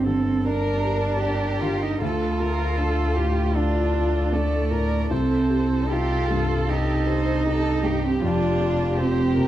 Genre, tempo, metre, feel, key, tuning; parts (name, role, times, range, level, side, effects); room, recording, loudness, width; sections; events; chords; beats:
neoclassical piano and strings; 78 BPM; 4/4; rubato; G minor; A4 = 440 Hz
dark cello; second line; 0.0-9.5 s; A3 to F4; -25 LUFS; right 3 dB
felt-muted upright piano; accompaniment; 0.0-9.5 s; C2 to G4; -28 LUFS; left 2 dB
warm viola; accompaniment; 0.0-9.5 s; G4 to D5; -32 LUFS; right 3 dB
warm double bass; bass; 0.0-9.5 s; F1 to D2; -25 LUFS; left 1 dB
warm chamber violin section; melody; 0.5-9.5 s; F4 to C5; -29 LUFS; left 1 dB
moderate large studio reverb, RT60 1.4 s; dark, warm production; -20 LUFS; side -13 dB against mid
0.0-9.5 A section
0.0 Gm; 2.0 Dm; 5.1 Cm; 8.2 Fsus2
0.46 1.23 | 2.01 2.78 3.55 4.33 | 5.11 5.91 6.69 7.46 | 8.22 8.98